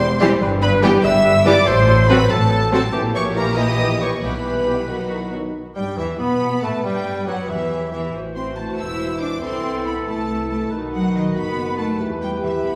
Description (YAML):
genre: classical, dramatic, fast romantic movement for symphony orchestra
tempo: 93 BPM (dotted quarters)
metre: 6/8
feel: straight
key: E minor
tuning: A4 = 440 Hz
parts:
  - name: rich symphonic violin section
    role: melody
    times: 0.0-12.8 s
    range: D#5 to E6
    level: -30 LUFS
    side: equal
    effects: none
  - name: dark clarinet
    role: second line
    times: 0.0-12.8 s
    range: E3 to E5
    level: -30 LUFS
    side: equal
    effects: none
  - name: mellow large flute ensemble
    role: second line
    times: 0.0-12.8 s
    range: G4 to E6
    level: -28 LUFS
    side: equal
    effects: none
  - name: warm cor anglais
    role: second line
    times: 0.0-12.8 s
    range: E3 to C5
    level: -34 LUFS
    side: equal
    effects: none
  - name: mellow bassoon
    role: accompaniment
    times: 0.0-12.8 s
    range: D#3 to B3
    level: -30 LUFS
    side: equal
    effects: none
  - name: mellow trumpet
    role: stabs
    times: 0.0-5.3 s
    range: G4 to E5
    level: -26 LUFS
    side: equal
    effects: none
  - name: rich symphonic double bass section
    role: bass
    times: 0.0-12.8 s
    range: E1 to B2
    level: -28 LUFS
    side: equal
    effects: none
  - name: warm studio cello section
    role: bass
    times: 0.0-12.8 s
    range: E2 to E4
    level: -26 LUFS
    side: equal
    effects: none
  - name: warm symphonic violin section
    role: second line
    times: 0.2-12.8 s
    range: B3 to E6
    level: -33 LUFS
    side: equal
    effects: none
  - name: warm symphonic viola section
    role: accompaniment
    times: 0.2-12.8 s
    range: E3 to B4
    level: -29 LUFS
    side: equal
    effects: none
  - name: warm French horn section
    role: sustained chords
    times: 0.2-12.8 s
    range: E3 to C5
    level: -30 LUFS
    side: equal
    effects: none
  - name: warm trombone section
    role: sustained chords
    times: 0.2-5.4 s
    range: D#3 to A#3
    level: -34 LUFS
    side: equal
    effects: none
room: wet recital hall reverb, RT60 1.8 s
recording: recorded in a church or concert hall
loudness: -19 LUFS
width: mono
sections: 0.0-5.5 A section; 5.5-12.8 B section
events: none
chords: 0.4 Em/G; 1.7 F#dim/A; 2.9 D#7b9/A#; 4.2 Em/B; 4.9 B; 5.5 Em; 8.1 Am; 9.4 Am/C; 10.7 B; 12.0 Em